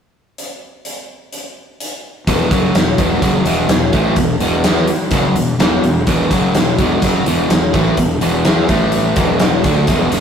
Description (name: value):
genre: classic rock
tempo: 126 BPM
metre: 4/4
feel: straight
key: unclear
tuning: A4 = 440 Hz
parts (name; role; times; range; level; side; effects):
- big rock drum kit; drums; 0.4-10.2 s; hi-hat, kick drum, snare drum; -16 LUFS; left 1 dB; none
- crunchy overdriven guitar; riff; 2.3-10.2 s; E2 to E4; -16 LUFS; equal; none
- fuzz fingered electric bass; bass; 2.3-10.2 s; E1 to E2; -19 LUFS; equal; overdrive
room: moderate studio reverb, RT60 0.6 s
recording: rough rehearsal-room recording, tube saturation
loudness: -12 LUFS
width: side -7 dB against mid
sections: 0.4-2.3 A section; 2.3-10.2 B section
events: none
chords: 0.4 N.C.; 2.3 E5; 8.7 A5; 9.2 E5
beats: | 0.38 0.85 1.32 1.80 | 2.27 2.75 3.22 3.70 | 4.17 4.65 5.12 5.60 | 6.07 6.55 7.03 7.50 | 7.98 8.46 8.93 9.41 | 9.89